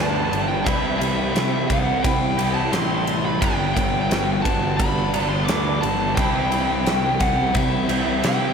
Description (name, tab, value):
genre	rock, shoegaze and dream pop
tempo	87 BPM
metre	4/4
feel	straight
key	unclear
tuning	A4 = 440 Hz
part	biting lead guitar	melody	0.0-8.5 s	E5 to D6	-25 LUFS	equal	overdrive, tape echo
part	picked twelve-string acoustic guitar	arpeggios	0.0-8.5 s	E3 to G4	-29 LUFS	left 1 dB	wide subtle chorus, tape echo
part	crunchy overdriven guitar	riff	0.0-8.5 s	G2 to G4	-26 LUFS	right 9 dB	reverse reverb
part	thick fuzz guitar	riff	0.0-8.5 s	G2 to C4	-26 LUFS	left 6 dB	distortion, lush chorus
part	fuzz picked electric bass	bass	0.0-8.5 s	G1 to D2	-26 LUFS	equal	overdrive
part	huge arena drum kit	drums	0.3-8.4 s	kick drum, ride cymbal, snare drum	-25 LUFS	equal	none
room	wet huge ambient reverb, RT60 4.2 s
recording	dreamy mix soaked in reverb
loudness	-18 LUFS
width	side -6 dB against mid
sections	0.0-8.5 A section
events	none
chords	0.0 G; 0.7 C; 3.4 Gmaj7; 6.2 C